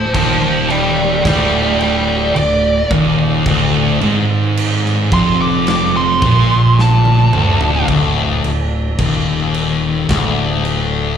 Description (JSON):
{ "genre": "stoner and doom metal", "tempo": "54 BPM", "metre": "4/4", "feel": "straight", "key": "unclear", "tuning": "A4 = 440 Hz", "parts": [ { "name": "fuzz lead guitar", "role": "melody", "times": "0.0-7.9 s", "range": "C5 to D6", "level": "-17 LUFS", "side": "right 1 dB", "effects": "distortion, slapback echo, tape echo" }, { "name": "thick fuzz guitar", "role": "riff", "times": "0.0-11.2 s", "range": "D2 to Bb2", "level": "-17 LUFS", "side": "left 7 dB", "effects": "distortion, slapback echo" }, { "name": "thick fuzz guitar", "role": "riff", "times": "0.0-7.9 s", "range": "D2 to Bb2", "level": "-16 LUFS", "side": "right 9 dB", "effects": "distortion, slapback echo" }, { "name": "fingered electric bass", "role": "bass", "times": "0.0-11.2 s", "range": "D1 to Bb1", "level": "-21 LUFS", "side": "right 1 dB", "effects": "overdrive" }, { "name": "big rock drum kit", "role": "drums", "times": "0.1-10.9 s", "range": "crash cymbal, kick drum, snare drum, toms", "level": "-21 LUFS", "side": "right 1 dB", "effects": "none" } ], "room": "light reverb", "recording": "live gig heard through the venue's PA, club reverb", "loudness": "-12 LUFS", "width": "side -8 dB against mid", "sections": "0.0-7.9 A section; 7.9-11.2 B section", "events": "lead electric guitar solo 0.0-7.9; drum fill 6.8-7.9", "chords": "0.0 Dm; 7.9 N.C.", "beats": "0.15 1.26 2.36 | 3.47 4.57 5.67 6.78 | 7.88 8.99 10.09" }